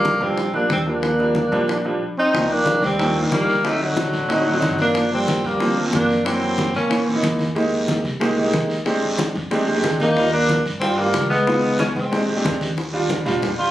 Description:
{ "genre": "Afro-Cuban jazz", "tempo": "184 BPM", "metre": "4/4", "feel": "straight", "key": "C minor", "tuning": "A4 = 443 Hz", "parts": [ { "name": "clear tenor saxophone", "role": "melody", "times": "0.0-7.1, 10.0-13.7 s", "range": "F#3 to F4", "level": "-21 LUFS", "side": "left 1 dB", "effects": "slapback echo" }, { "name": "warm trombone", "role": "second line", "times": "0.0-7.1, 10.0-12.4 s", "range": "D3 to C4", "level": "-23 LUFS", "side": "right 1 dB", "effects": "none" }, { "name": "clear upright piano", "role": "accompaniment", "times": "0.0-13.7 s", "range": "Eb3 to G4", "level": "-22 LUFS", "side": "right 1 dB", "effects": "none" }, { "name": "upright bass", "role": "bass", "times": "0.0-13.7 s", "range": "G1 to A#2", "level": "-30 LUFS", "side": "equal", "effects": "none" }, { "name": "congas", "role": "percussion", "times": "0.0-13.7 s", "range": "none", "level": "-28 LUFS", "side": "equal", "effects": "none" }, { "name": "bongos", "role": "percussion", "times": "0.1-13.6 s", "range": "none", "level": "-28 LUFS", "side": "left 5 dB", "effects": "none" }, { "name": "guiro", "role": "percussion", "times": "2.3-13.7 s", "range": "none", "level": "-32 LUFS", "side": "right 1 dB", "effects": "none" } ], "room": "light reverb", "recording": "recorded on a phone in the room, studio reverb, compression", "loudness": "-17 LUFS", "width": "side -14 dB against mid", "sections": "0.0-2.3 A section; 2.3-12.8 B section", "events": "none", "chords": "0.0 Ebmaj9; 2.3 Cm11; 3.6 D7b9; 5.0 Gm7; 6.3 F#7#11; 7.6 Fm11; 8.9 Bb13; 10.2 Ebmaj9; 11.5 Db9; 12.1 Bb13; 12.8 Ebmaj9", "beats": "0.05 0.38 0.70 | 1.03 1.36 1.69 2.01 | 2.34 2.67 2.99 3.32 | 3.65 3.97 4.30 4.62 | 4.95 5.28 5.60 5.93 | 6.26 6.58 6.91 7.24 | 7.56 7.89 8.21 8.54 | 8.87 9.19 9.52 9.84 | 10.17 10.49 10.82 11.15 | 11.47 11.80 12.12 12.45 | 12.78 13.10 13.43" }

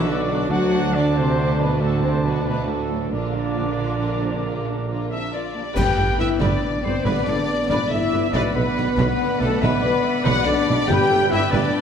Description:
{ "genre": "cinematic, heroic adventure film score", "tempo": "93 BPM (dotted quarters)", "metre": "12/8", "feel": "straight", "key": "G major", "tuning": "A4 = 440 Hz", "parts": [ { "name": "warm symphonic violin section", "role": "melody", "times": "0.0-11.8 s", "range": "D4 to G5", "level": "-29 LUFS", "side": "left 6 dB", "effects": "none" }, { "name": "bright clarinet", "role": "second line", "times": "0.0-11.8 s", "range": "D4 to G5", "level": "-31 LUFS", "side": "left 2 dB", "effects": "none" }, { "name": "mellow cor anglais", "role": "second line", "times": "0.0-11.8 s", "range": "Bb4 to A5", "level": "-32 LUFS", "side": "right 3 dB", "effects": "none" }, { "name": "silver concert flute", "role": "second line", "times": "0.0-11.8 s", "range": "A4 to D6", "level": "-34 LUFS", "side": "left 2 dB", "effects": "none" }, { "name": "warm symphonic violin section", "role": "second line", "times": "0.0-11.8 s", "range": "G3 to B5", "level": "-35 LUFS", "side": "left 2 dB", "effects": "none" }, { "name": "warm symphonic viola section", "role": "accompaniment", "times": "0.0-11.8 s", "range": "A3 to D5", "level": "-30 LUFS", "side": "left 1 dB", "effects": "none" }, { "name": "warm symphonic cello section", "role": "bass", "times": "0.0-11.6 s", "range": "G2 to F#3", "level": "-27 LUFS", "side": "right 3 dB", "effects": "none" }, { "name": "warm symphonic double bass section", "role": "bass", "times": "0.0-11.6 s", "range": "G1 to D2", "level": "-27 LUFS", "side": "right 3 dB", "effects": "none" }, { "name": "warm tuba", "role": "bass", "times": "0.0-11.6 s", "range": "G1 to D2", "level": "-28 LUFS", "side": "right 4 dB", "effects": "none" }, { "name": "warm trumpet section", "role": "stabs", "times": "0.1-11.8 s", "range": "A4 to G5", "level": "-29 LUFS", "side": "equal", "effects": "none" }, { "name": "mellow French horn section", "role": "sustained chords", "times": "0.3-11.8 s", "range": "A3 to G4", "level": "-25 LUFS", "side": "left 3 dB", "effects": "none" }, { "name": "warm trombone section", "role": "sustained chords", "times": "0.3-11.8 s", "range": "Bb2 to B3", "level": "-31 LUFS", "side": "right 1 dB", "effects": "none" }, { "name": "timpani", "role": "percussion", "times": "0.5-1.1, 10.9-11.5 s", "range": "G2 to D3", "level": "-29 LUFS", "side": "left 2 dB", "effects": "none" }, { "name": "concert snare drum, clash cymbals and concert bass drum", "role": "drums", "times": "5.8-11.7 s", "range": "none", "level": "-28 LUFS", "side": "equal", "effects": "none" }, { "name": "clash cymbals and concert bass drum", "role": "percussion", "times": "5.8-6.6 s", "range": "none", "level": "-29 LUFS", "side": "left 1 dB", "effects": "none" } ], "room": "moderate scoring stage reverb, RT60 1.9 s", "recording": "none", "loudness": "-18 LUFS", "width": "side -7 dB against mid", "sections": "0.0-5.8 A section; 5.8-11.8 B section", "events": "band accent 5.8-6.2", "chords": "0.0 Bm; 0.5 D; 3.1 Bb; 5.8 G; 8.3 Bm; 10.9 G", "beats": "| 0.51 1.16 1.81 2.46 | 3.13 3.79 4.45 5.11 | 5.77 6.41 7.06 7.70 | 8.34 8.98 9.62 10.26 | 10.90 11.53" }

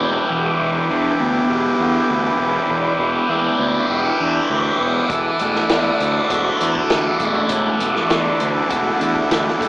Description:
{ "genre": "psychedelic rock", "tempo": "100 BPM", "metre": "4/4", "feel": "straight", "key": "E minor", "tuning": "A4 = 440 Hz", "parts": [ { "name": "combo organ", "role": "sustained chords", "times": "0.0-9.7 s", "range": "E4 to D6", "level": "-20 LUFS", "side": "right 1 dB", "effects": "none" }, { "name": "thick fuzz guitar", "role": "riff", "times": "0.0-9.7 s", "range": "E3 to G4", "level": "-19 LUFS", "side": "equal", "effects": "distortion, phaser" }, { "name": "fuzz fingered electric bass", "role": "bass", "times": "0.0-9.7 s", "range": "E1 to E2", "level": "-24 LUFS", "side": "equal", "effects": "overdrive" }, { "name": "vintage drum kit", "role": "drums", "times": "5.1-9.7 s", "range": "hi-hat, kick drum, snare drum", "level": "-22 LUFS", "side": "equal", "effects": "none" } ], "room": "moderate plate reverb, RT60 2.2 s", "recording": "small speaker sound", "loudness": "-15 LUFS", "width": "side -21 dB against mid", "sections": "0.0-9.7 A section", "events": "none", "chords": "0.0 Em7; 5.1 Dadd9/E", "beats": "| 0.30 0.90 1.50 2.10 | 2.70 3.30 3.90 4.50 | 5.10 5.70 6.30 6.90 | 7.50 8.10 8.70 9.30" }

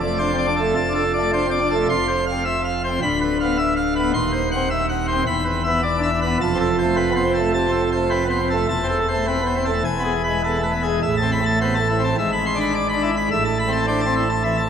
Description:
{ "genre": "classical, organ toccata", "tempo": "106 BPM", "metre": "4/4", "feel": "straight", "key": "A minor", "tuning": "A4 = 443 Hz", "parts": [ { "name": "pipe organ, plenum", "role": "solo", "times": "0.0-14.7 s", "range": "D1 to C6", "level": "-18 LUFS", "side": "equal", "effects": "none" } ], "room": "wet church reverb, RT60 2.8 s", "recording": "none", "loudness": "-18 LUFS", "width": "side -8 dB against mid", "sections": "0.0-11.0 A section; 11.0-14.7 B section", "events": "none", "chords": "0.0 Dm/F; 1.9 F5; 3.0 Bdim/D; 4.1 D#m6; 5.3 E5; 6.4 F; 8.7 Am/E; 9.9 E; 11.0 Am; 12.2 E7/G#; 13.3 Am", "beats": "0.20 0.76 1.33 | 1.89 2.46 3.02 3.58 | 4.14 4.70 5.26 5.83 | 6.40 6.96 7.54 8.11 | 8.69 9.28 9.86 10.44 | 11.03 11.60 12.17 12.74 | 13.30 13.87 14.44" }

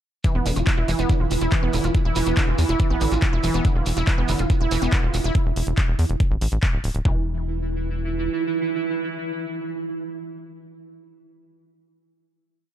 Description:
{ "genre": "psychedelic trance", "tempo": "141 BPM", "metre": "4/4", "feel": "straight", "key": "unclear", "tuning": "A4 = 439 Hz", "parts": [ { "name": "pulsing gated texture", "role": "sustained chords", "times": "0.2-10.4 s", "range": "E3 to E4", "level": "-27 LUFS", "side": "right 4 dB", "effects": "chorus, built-in reverb, sidechain pumping" }, { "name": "wide unison pluck", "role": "riff", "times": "0.2-7.2 s", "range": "D3 to F4", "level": "-27 LUFS", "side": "right 1 dB", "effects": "auto-pan, sidechain pumping, tape echo" }, { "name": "drum and bass drum kit", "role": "drums", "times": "0.2-7.0 s", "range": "handclaps, hi-hat", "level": "-30 LUFS", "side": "equal", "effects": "overdrive" }, { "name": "electronic kick drum", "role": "drums", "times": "0.2-7.1 s", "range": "none", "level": "-20 LUFS", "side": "equal", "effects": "overdrive" }, { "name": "shekere", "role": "percussion", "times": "0.2-5.3 s", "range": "none", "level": "-34 LUFS", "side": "right 3 dB", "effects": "none" }, { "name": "tight sequencer bass", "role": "bass", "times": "0.3-8.3 s", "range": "D1 to E2", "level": "-24 LUFS", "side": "equal", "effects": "none" } ], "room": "light reverb", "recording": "dark, warm production", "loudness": "-20 LUFS", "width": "side -11 dB against mid", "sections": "0.2-7.1 groove; 7.1-10.5 final chord", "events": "none", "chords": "0.2 E5; 7.1 N.C.", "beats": "| 0.24 0.67 1.09 1.52 | 1.95 2.37 2.80 3.22 | 3.65 4.07 4.50 4.92 | 5.35 5.78 6.20 6.63 | 7.05 7.48 7.90 8.33 | 8.75 9.18 9.61 10.03" }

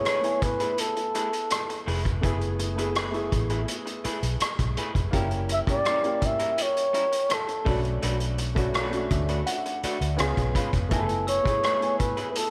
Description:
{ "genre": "lush 1970s-style soul", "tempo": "83 BPM", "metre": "4/4", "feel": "straight", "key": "F# minor", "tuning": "A4 = 438 Hz", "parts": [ { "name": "breathy flugelhorn", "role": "melody", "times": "0.0-12.5 s", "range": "A4 to E5", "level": "-28 LUFS", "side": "equal", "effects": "none" }, { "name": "warm baby grand piano", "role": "accompaniment", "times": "0.0-12.5 s", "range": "A3 to B5", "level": "-34 LUFS", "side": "equal", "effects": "none" }, { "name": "electric guitar through a small old amp", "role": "riff", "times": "0.1-12.3 s", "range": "G3 to B4", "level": "-37 LUFS", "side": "equal", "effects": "none" }, { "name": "vintage drum kit", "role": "drums", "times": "0.1-12.5 s", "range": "hi-hat, kick drum, rim click", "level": "-31 LUFS", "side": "equal", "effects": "none" }, { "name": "vintage muted fingered electric bass", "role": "bass", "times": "1.9-11.5 s", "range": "E#1 to D2", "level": "-31 LUFS", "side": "equal", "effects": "none" }, { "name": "glockenspiel with hard plastic mallets", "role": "texture", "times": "11.3-12.5 s", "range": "E6", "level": "-44 LUFS", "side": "equal", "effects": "none" } ], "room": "moderate echo chamber reverb, RT60 2.2 s", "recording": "none", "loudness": "-26 LUFS", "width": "mono", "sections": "0.0-12.5 A section", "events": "grand piano fill 8.7-10.9", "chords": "0.0 F#m11; 5.1 F#7b9; 7.7 Bm7; 10.2 C#7; 10.9 F#m11", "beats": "0.06 0.78 1.51 | 2.23 2.96 3.68 4.41 | 5.13 5.85 6.58 7.30 | 8.02 8.75 9.47 10.19 | 10.92 11.64 12.36" }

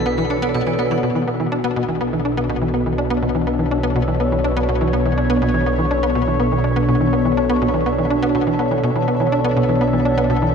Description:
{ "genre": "ambient, sequencer-driven space music", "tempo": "123 BPM", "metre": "4/4", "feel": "straight", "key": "unclear", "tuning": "A4 = 439 Hz", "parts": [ { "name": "sweeping resonant pad", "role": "sustained chords", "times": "0.0-10.5 s", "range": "B2 to D5", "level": "-19 LUFS", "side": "equal", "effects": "chorus, phaser" }, { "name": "vibraphone with hard mallets", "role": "arpeggios", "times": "0.0-1.1 s", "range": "F#4 to B5", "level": "-28 LUFS", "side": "right 1 dB", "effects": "auto-pan, ping-pong delay" }, { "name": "tight sequencer bass", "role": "riff", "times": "0.0-10.5 s", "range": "B2 to D4", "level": "-21 LUFS", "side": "equal", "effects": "analog chorus, ping-pong delay" }, { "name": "round analog bass", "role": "bass", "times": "0.0-10.5 s", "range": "B1", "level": "-26 LUFS", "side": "equal", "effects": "none" }, { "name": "pulsing gated texture", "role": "texture", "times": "0.0-10.5 s", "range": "A4 to E5", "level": "-36 LUFS", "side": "equal", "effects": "chorus, built-in reverb" } ], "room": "wet cathedral reverb, RT60 6.3 s", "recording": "in a vast, echoing space", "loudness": "-16 LUFS", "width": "side -6 dB against mid", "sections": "0.0-1.0 A section; 1.0-10.5 B section", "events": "fade-in on synth texture 1.0-10.5", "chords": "0.0 Bm7", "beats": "0.06 0.54 | 1.03 1.52 2.01 2.49 | 2.98 3.47 3.96 4.45 | 4.93 5.42 5.91 6.40 | 6.88 7.37 7.86 8.35 | 8.84 9.32 9.81 10.30" }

